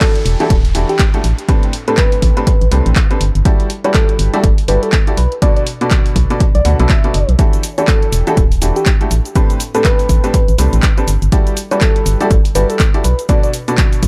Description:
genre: piano house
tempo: 122 BPM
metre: 4/4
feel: swing 59% on 16ths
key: E minor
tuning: A4 = 441 Hz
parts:
  - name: soft struck synth lead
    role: melody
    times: 0.0-13.5 s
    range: G4 to E5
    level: -22 LUFS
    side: equal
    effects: chorus, delay
  - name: bright grand piano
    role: riff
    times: 0.0-14.1 s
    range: A2 to F#5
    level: -22 LUFS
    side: equal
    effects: sidechain pumping, delay
  - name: electronic kick drum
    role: drums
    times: 0.0-14.1 s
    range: none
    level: -15 LUFS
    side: equal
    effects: none
  - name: house drum kit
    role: drums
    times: 0.0-14.1 s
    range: handclaps, hi-hat, shaker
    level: -24 LUFS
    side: equal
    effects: none
  - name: downlifter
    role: sound effects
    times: 0.0-3.5 s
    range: none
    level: -37 LUFS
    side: equal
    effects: none
  - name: organ-like FM bass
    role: bass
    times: 0.3-14.1 s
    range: D1 to D2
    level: -16 LUFS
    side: equal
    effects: sidechain pumping
room: little or no reverb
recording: dark, warm production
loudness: -13 LUFS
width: mono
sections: 0.0-14.1 A section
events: none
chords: 0.0 Em11; 1.2 Am11; 3.2 Em11/G; 5.2 Bm7; 7.4 Em11; 9.1 Am11; 11.1 Em11/G; 13.0 Bm7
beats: 0.01 0.50 0.99 | 1.49 1.98 2.47 2.96 | 3.45 3.94 4.44 4.93 | 5.42 5.91 6.40 6.90 | 7.39 7.88 8.37 8.86 | 9.36 9.85 10.34 10.83 | 11.32 11.81 12.31 12.80 | 13.29 13.78

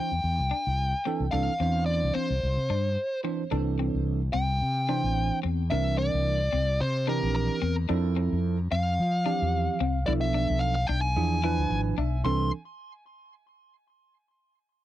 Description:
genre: jazz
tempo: 110 BPM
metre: 4/4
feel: swing 55% on 16ths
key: C major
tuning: A4 = 444 Hz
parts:
  - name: dark smooth lead guitar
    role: melody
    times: 0.0-12.5 s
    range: Bb4 to C6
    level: -30 LUFS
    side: left 1 dB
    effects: overdrive, tape echo
  - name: bell-like tine electric piano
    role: accompaniment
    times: 0.0-12.5 s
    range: E3 to G#5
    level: -30 LUFS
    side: right 8 dB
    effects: lush chorus
  - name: electric guitar at the edge of break-up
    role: stabs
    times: 0.0-12.4 s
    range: C4 to E4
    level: -34 LUFS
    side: left 12 dB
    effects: analog chorus
  - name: fretless electric bass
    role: bass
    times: 0.1-12.5 s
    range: G#1 to F3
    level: -27 LUFS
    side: left 1 dB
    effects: none
room: little or no reverb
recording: dry, close 1970s-style studio recording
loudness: -24 LUFS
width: side -13 dB against mid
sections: 0.0-3.5 A section; 3.5-12.2 B section; 12.2-14.4 C section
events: tine electric piano fill 11.4-12.2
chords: 0.0 Cadd9; 3.5 C69; 5.7 C9; 7.9 Fmaj7; 10.1 Bm7b5; 11.2 E7b9; 12.2 C69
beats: 0.25 0.79 | 1.34 1.89 2.43 2.98 | 3.52 4.07 4.62 5.16 | 5.71 6.26 6.80 7.35 | 7.89 8.44 8.98 9.53 | 10.07 10.62 11.16 11.71 | 12.25

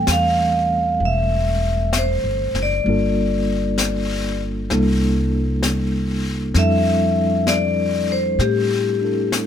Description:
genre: jazz ballad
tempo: 65 BPM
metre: 4/4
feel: swing 68% on 8ths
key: F major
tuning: A4 = 445 Hz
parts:
  - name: vibraphone with medium hard mallets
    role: melody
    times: 0.0-9.3 s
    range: G4 to G5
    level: -20 LUFS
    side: left 2 dB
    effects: plate reverb
  - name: tine electric piano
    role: accompaniment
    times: 0.0-9.5 s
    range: E3 to A4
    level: -23 LUFS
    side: right 1 dB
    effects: medium tremolo
  - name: upright bass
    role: bass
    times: 0.0-9.5 s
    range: E1 to A2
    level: -22 LUFS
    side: left 1 dB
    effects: none
  - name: jazz brush drum kit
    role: drums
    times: 0.1-9.5 s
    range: brushed snare drum, hi-hat, snare drum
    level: -27 LUFS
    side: left 4 dB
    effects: none
room: light reverb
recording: none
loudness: -17 LUFS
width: side -9 dB against mid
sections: 0.0-9.5 A section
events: none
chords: 0.0 Am7; 2.9 Gm7; 4.7 C13; 6.5 Fmaj13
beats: 0.07 1.00 1.93 | 2.85 3.78 4.70 5.63 | 6.55 7.47 8.39 9.32

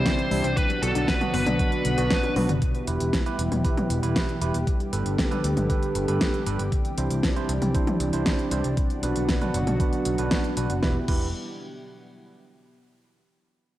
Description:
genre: synthwave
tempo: 117 BPM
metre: 4/4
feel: straight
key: E minor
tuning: A4 = 439 Hz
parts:
  - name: bluesy overdriven lead guitar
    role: melody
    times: 0.0-2.3 s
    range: A4 to C5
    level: -28 LUFS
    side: equal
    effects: distortion, cassette tape, tape echo
  - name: lush unison pad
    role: sustained chords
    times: 0.0-11.1 s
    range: B2 to G4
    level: -28 LUFS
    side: equal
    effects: chorus, sidechain pumping, cassette tape
  - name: soft round pluck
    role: arpeggios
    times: 0.0-2.6 s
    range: D3 to B4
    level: -33 LUFS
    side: left 6 dB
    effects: chorus, cassette tape, analog delay
  - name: overdriven tine electric piano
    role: stabs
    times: 0.0-11.3 s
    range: B3 to C5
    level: -32 LUFS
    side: right 6 dB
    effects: low-pass filter, cassette tape, analog delay
  - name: picked electric bass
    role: bass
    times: 0.0-11.3 s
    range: E1 to D2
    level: -28 LUFS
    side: equal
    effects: tube saturation, low-pass filter
  - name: electronic kick drum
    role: drums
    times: 0.1-11.2 s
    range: none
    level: -26 LUFS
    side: equal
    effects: cassette tape
  - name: pop drum kit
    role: drums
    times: 0.1-11.2 s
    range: crash cymbal, hi-hat, snare drum, toms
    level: -28 LUFS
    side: equal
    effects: cassette tape
room: moderate lush hall reverb, RT60 1.9 s, digital ambience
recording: home recording on cassette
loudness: -22 LUFS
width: side -14 dB against mid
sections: 0.0-2.6 A section; 2.6-10.8 B section; 10.8-12.9 C section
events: drum fill 2.2-2.6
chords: 0.0 Cadd9; 0.6 Bm; 2.6 Em; 4.7 Gadd9; 6.7 Cadd9; 8.8 Bm; 10.8 Em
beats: 0.06 | 0.57 1.08 1.59 2.11 | 2.62 3.13 3.65 4.16 | 4.67 5.18 5.70 6.21 | 6.72 7.24 7.75 8.26 | 8.77 9.29 9.80 10.31 | 10.82

